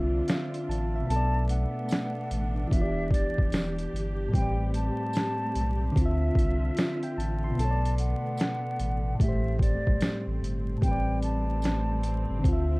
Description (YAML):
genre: lo-fi hip hop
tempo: 74 BPM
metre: 4/4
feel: swing 63% on 16ths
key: A minor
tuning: A4 = 440 Hz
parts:
  - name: soft electric-piano-like synth keys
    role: accompaniment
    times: 0.0-12.8 s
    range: A2 to C6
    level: -31 LUFS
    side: left 1 dB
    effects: chorus, cassette tape, low-pass filter
  - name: warm studio string section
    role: sustained chords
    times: 0.0-12.8 s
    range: D3 to E5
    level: -37 LUFS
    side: right 1 dB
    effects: low-pass filter
  - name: warm sub bass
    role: bass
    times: 0.0-12.8 s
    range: E1 to D2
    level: -29 LUFS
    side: equal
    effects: none
  - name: boom bap sampler-style drum kit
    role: drums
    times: 0.3-12.7 s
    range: hi-hat, kick drum, snare drum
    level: -27 LUFS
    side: equal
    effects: none
  - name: tambourine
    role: percussion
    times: 0.3-11.9 s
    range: none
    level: -52 LUFS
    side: right 5 dB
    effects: none
  - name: breathy concert flute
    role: melody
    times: 1.1-12.7 s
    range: D5 to A5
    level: -34 LUFS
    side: equal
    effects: low-pass filter
room: light reverb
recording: dark, warm production, vinyl crackle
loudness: -25 LUFS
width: side -25 dB against mid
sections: 0.0-10.8 A section; 10.8-12.8 B section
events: none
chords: 0.0 Dm9; 1.1 Bm7; 2.7 Em7; 4.3 Am11; 6.0 Dm9; 7.6 Bm7; 9.2 Am7; 10.8 Am11